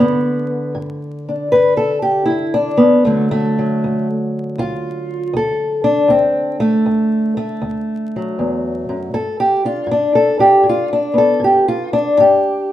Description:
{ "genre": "acoustic country blues, solo or duo", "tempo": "79 BPM", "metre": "4/4", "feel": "swing 67% on 8ths", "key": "D major", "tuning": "A4 = 439 Hz", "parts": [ { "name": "fingerpicked old ladder-braced acoustic guitar", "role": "solo", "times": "0.0-12.7 s", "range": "D2 to B4", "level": "-14 LUFS", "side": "left 1 dB", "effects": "none" } ], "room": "wet stone room reverb, RT60 0.9 s", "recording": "band playing live in one room, vinyl crackle", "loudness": "-14 LUFS", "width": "side -12 dB against mid", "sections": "0.0-12.7 A section", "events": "steel-string acoustic guitar solo 0.0-12.7", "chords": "0.0 G; 3.1 D; 9.1 G", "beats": "| 0.02 0.78 1.54 2.30 | 3.06 3.82 4.58 5.34 | 6.10 6.86 7.62 8.38 | 9.14 9.90 10.67 11.43 | 12.19" }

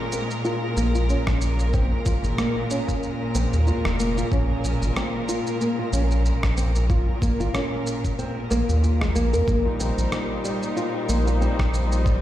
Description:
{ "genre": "organic downtempo", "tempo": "93 BPM", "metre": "4/4", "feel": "swing 56% on 16ths", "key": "Bb dorian", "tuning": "A4 = 441 Hz", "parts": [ { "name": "rich studio string section", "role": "sustained chords", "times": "0.0-12.2 s", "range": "Bb2 to C5", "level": "-27 LUFS", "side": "equal", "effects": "sidechain pumping, shimmer reverb" }, { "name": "nylon-string guitar", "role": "arpeggios", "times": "0.0-12.2 s", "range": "G3 to Bb4", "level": "-27 LUFS", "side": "equal", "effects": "low-pass filter, ping-pong delay, shimmer reverb" }, { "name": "electronic shaker and rim click", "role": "drums", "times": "0.1-12.2 s", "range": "none", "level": "-33 LUFS", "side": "equal", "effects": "none" }, { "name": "round analog bass", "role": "bass", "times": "0.8-12.2 s", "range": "F1 to F2", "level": "-22 LUFS", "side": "equal", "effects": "sidechain pumping" }, { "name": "electronic kick drum", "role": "drums", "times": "1.3-12.2 s", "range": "none", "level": "-24 LUFS", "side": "equal", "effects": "none" } ], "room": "light reverb, digital ambience", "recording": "played on a big sound system in a bare room, large studio reverb", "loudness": "-20 LUFS", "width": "side -13 dB against mid", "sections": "0.0-12.2 A section", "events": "filter sweep on nylon-string guitar 0.0-12.2", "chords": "0.0 Bbm7; 9.5 Cm", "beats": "0.45 1.09 | 1.74 2.38 3.03 3.67 | 4.32 4.96 5.61 6.25 | 6.90 7.54 8.19 8.83 | 9.48 10.12 10.77 11.41 | 12.06" }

